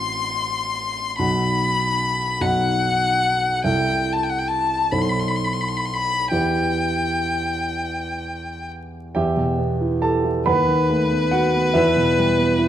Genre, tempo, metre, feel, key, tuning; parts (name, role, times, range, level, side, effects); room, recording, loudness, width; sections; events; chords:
classical, romantic duo for violin and grand piano; 41-50 BPM (dotted quarters); 6/8; rubato; E minor; A4 = 443 Hz
rich violin; melody; 0.0-12.7 s; B4 to C6; -21 LUFS; left 3 dB
dark grand piano; accompaniment; 0.0-12.7 s; A1 to B5; -21 LUFS; right 2 dB
moderate recital hall reverb, RT60 1.4 s; close, detailed microphones, vinyl crackle; -18 LUFS; side -11 dB against mid
0.0-9.2 A section; 9.2-12.7 B section
0.0 F#dim/A; 1.2 B; 3.6 C6; 4.9 B7b9; 6.3 Em; 10.5 B7/D#; 11.8 Em